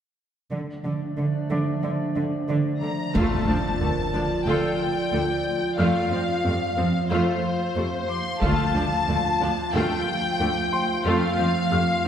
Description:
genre	cinematic, hybrid orchestral and electronic film score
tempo	91 BPM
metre	4/4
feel	straight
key	D minor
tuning	A4 = 441 Hz
part	warbly tape-like pad	sustained chords	0.5-12.1 s	F3 to F5	-27 LUFS	right 1 dB	chorus, built-in reverb
part	rich symphonic cello section	bass	0.5-12.1 s	D2 to D3	-26 LUFS	right 2 dB	none
part	warm grand piano	texture	1.5-12.1 s	Bb4 to F6	-35 LUFS	left 3 dB	none
part	warm symphonic violin section	melody	2.8-12.1 s	C5 to C6	-27 LUFS	left 3 dB	none
part	taiko ensemble	drums	3.1-4.4, 8.4-9.7 s	none	-31 LUFS	left 1 dB	none
part	impact	sound effects	3.1-5.8 s	none	-30 LUFS	equal	none
part	rich symphonic viola section	accompaniment	3.2-12.1 s	C3 to A4	-28 LUFS	equal	none
room	wet concert hall reverb, RT60 2.2 s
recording	recorded in a church or concert hall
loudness	-21 LUFS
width	side -9 dB against mid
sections	0.5-3.1 A section; 3.1-12.1 B section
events	impact 3.1-5.8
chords	0.5 Dm; 5.8 F; 8.4 Dm; 11.1 F

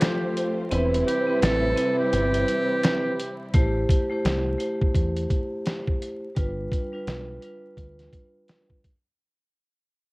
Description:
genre	hip hop, boom-bap hip-hop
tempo	85 BPM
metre	4/4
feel	swing 60% on 16ths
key	A minor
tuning	A4 = 441 Hz
part	trumpet with metal mute	melody	0.0-3.5 s	G4 to A4	-32 LUFS	equal	high-pass filter, low-pass filter, cassette tape, tape echo
part	vibraphone with hard mallets	accompaniment	0.0-8.8 s	F3 to C5	-26 LUFS	equal	cassette tape, high-pass filter, low-pass filter
part	clear studio string section	sustained chords	0.0-3.5 s	C3 to E4	-36 LUFS	equal	high-pass filter, low-pass filter
part	dark studio string section	stabs	0.0-3.5 s	G3 to C5	-31 LUFS	equal	high-pass filter, low-pass filter, tape echo
part	dusty soul sampler-style drum kit	drums	0.0-9.0 s	hi-hat, kick drum, snare drum	-24 LUFS	equal	cassette tape
part	finger snaps	percussion	0.0-3.0 s	none	-39 LUFS	left 2 dB	none
part	deep dub fingered electric bass	bass	0.7-8.1 s	E1 to E2	-27 LUFS	equal	none
room	small room ambience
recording	home recording on cassette, vinyl crackle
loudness	-22 LUFS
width	side -23 dB against mid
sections	0.0-3.5 A section; 3.5-9.2 B section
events	kick muted 0.7-3.5; fade-out 3.5-9.2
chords	0.0 F; 0.7 Cmaj7/E; 3.5 Am7; 6.4 G7

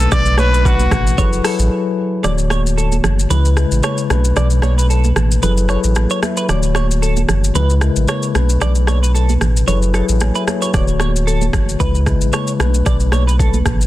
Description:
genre	afrobeats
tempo	113 BPM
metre	4/4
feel	swing 55% on 16ths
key	unclear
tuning	A4 = 440 Hz
part	clear trumpet	melody	0.0-1.5 s	F#4 to D5	-20 LUFS	left 1 dB	digital delay
part	mellow tine electric piano	accompaniment	0.0-13.9 s	B2 to B5	-20 LUFS	left 4 dB	slow stereo tremolo
part	warm sub bass	bass	0.0-13.9 s	D1 to C#2	-15 LUFS	equal	none
part	afro-pop drum kit	drums	0.0-13.9 s	hi-hat, kick drum, rim click, shaker	-20 LUFS	equal	soft clipping on snare
part	direct-recorded clean electric guitar	riff	0.1-13.6 s	A4 to D5	-24 LUFS	right 4 dB	analog chorus, digital delay
part	congas	percussion	0.1-13.8 s	none	-26 LUFS	right 8 dB	none
room	digital ambience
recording	dense, heavily limited modern master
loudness	-13 LUFS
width	side -15 dB against mid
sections	0.0-2.2 A section; 2.2-13.9 B section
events	break 1.7-2.2; kick muted 2.2-10.7; tine electric piano fill 5.7-6.5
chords	0.0 Bm7; 1.2 F#m11; 2.2 Dmaj7; 3.3 Amaj9/C#; 4.1 Bm7; 5.4 F#m11; 6.5 Dmaj7; 7.6 Amaj9/C#; 8.3 Bm7; 9.7 F#m11; 10.7 Dmaj7; 11.8 Amaj9/C#; 12.6 Bm7

